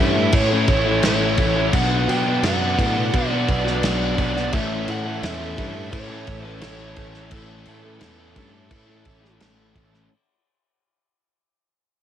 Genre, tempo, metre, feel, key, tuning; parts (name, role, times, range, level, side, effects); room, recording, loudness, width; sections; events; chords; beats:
rock, shoegaze and dream pop; 86 BPM; 4/4; straight; A major; A4 = 438 Hz
fuzz lead guitar; melody; 0.0-9.4 s; A4 to G5; -27 LUFS; left 1 dB; distortion, cassette tape, plate reverb, analog delay
string machine, violas; sustained chords; 0.0-10.1 s; A4 to D6; -34 LUFS; right 1 dB
biting overdriven guitar; riff; 0.0-10.1 s; A2 to F#4; -31 LUFS; left 2 dB
overdriven electric guitar; riff; 0.0-10.1 s; A2 to A4; -27 LUFS; right 10 dB; reverse reverb, cassette tape
overdriven semi-hollow guitar; riff; 0.0-10.1 s; A2 to F#4; -27 LUFS; left 8 dB; lush chorus, cassette tape
modern bright picked electric bass; bass; 0.0-10.1 s; A1 to B2; -26 LUFS; right 1 dB
loose indie drum kit; drums; 0.3-10.0 s; crash cymbal, kick drum, snare drum; -24 LUFS; equal; cassette tape
light reverb; home recording on cassette; -18 LUFS; side -10 dB against mid
0.0-10.1 A section
fade-out 0.0-10.1
0.0 A; 1.7 Bm; 4.5 A; 7.3 Aadd9
0.34 1.04 | 1.74 2.44 3.13 3.83 | 4.53 5.23 5.92 6.62 | 7.32 8.02 8.71 9.41